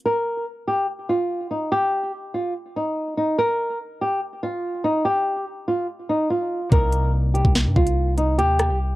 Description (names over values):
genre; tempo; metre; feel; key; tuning
hip hop, drill; 144 BPM; 4/4; half-time; C minor; A4 = 441 Hz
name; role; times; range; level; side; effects
concert harp; accompaniment; 0.0, 6.7-9.0 s; C3 to Eb4; -27 LUFS; left 2 dB; low-pass filter
flamenco guitar; melody; 0.1-8.8 s; Eb4 to Bb4; -22 LUFS; equal; low-pass filter, cassette tape
long sustained 808-style bass; bass; 6.7-9.0 s; C2 to G2; -21 LUFS; equal; none
drill drum kit; drums; 6.7-8.7 s; hi-hat, kick drum, rim click, snare drum; -18 LUFS; equal; cassette tape
room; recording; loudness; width
little or no reverb; home recording on cassette; -20 LUFS; side -17 dB against mid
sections
0.1-9.0 A section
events
none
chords
0.1 N.C.; 6.7 Cm7